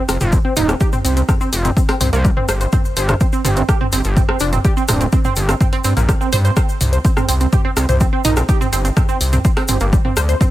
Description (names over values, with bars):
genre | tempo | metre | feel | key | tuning
melodic techno | 125 BPM | 4/4 | straight | C minor | A4 = 440 Hz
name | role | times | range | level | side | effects
tight sequenced synth | arpeggios | 0.0-10.5 s | G3 to C5 | -21 LUFS | right 2 dB | chorus, cassette tape, sidechain pumping, tape echo
gritty driven synth bass | bass | 0.1-10.3 s | D1 to G2 | -17 LUFS | equal | sidechain pumping
punchy analog drum machine | drums | 0.1-10.5 s | hi-hat, rim click, toms | -22 LUFS | equal | overdrive, sidechain pumping on hats, sidechain pumping on toms
cabasa | percussion | 0.1-10.5 s | none | -29 LUFS | left 2 dB | none
electronic kick drum | drums | 0.3-10.5 s | none | -16 LUFS | equal | overdrive
room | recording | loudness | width
little or no reverb | none | -13 LUFS | side -15 dB against mid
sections
0.0-10.5 A section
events
none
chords
0.0 Fsus2; 2.7 N.C.; 6.6 C5